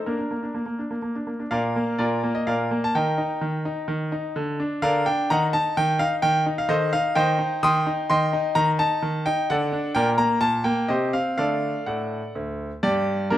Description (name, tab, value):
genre	classical-period piano sonatina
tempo	127 BPM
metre	3/4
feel	straight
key	Bb major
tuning	A4 = 440 Hz
part	bright concert grand piano	solo	0.0-13.4 s	D2 to Eb6	-21 LUFS	equal	none
room	moderate recital hall reverb, RT60 1.4 s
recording	close, detailed microphones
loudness	-21 LUFS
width	side -12 dB against mid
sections	0.0-1.5 A section; 1.5-12.8 B section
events	none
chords	0.1 Bb; 2.9 Eb; 4.4 Bb/D; 5.3 Ebm; 5.8 Eb69; 7.2 Cm/Eb; 8.6 N.C.; 9.5 D; 10.0 Bb6; 10.9 Cm; 11.4 D; 12.8 Gm